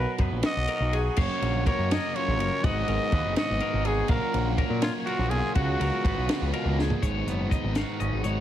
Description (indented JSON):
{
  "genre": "math rock and midwest emo",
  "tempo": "82 BPM (dotted quarters)",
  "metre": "6/8",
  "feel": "straight",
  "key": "F# major",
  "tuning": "A4 = 440 Hz",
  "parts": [
    { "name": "growling trumpet", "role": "melody", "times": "0.0-6.5 s", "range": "E#4 to D#5", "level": "-30 LUFS", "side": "equal", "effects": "none" },
    { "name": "twangy electric guitar", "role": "accompaniment", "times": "0.0-8.4 s", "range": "F#2 to A#4", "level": "-34 LUFS", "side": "right 6 dB", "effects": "none" },
    { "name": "twelve-string electric guitar", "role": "arpeggios", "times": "0.0-8.4 s", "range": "F#4 to E#5", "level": "-35 LUFS", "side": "left 6 dB", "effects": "wide subtle chorus" },
    { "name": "growling picked electric bass", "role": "bass", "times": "0.0-8.4 s", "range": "F#1 to A#2", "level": "-28 LUFS", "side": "equal", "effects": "overdrive" },
    { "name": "compact cocktail drum kit", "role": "drums", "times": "0.2-8.4 s", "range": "crash cymbal, hi-hat, kick drum, ride cymbal, snare drum, toms", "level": "-30 LUFS", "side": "equal", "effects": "none" },
    { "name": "biting overdriven guitar", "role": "riff", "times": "1.2-8.4 s", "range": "F#2 to F#4", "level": "-32 LUFS", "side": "left 1 dB", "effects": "none" }
  ],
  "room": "light reverb",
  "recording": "heavily compressed radio sound",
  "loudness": "-24 LUFS",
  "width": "side -11 dB against mid",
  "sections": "0.0-7.0 A section; 7.0-8.4 B section",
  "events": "drum fill 6.8",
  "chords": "0.0 Bmaj7; 1.2 F#maj7; 2.6 G#m7; 4.1 F#maj7/A#; 5.6 C#7sus4; 7.0 G#m7"
}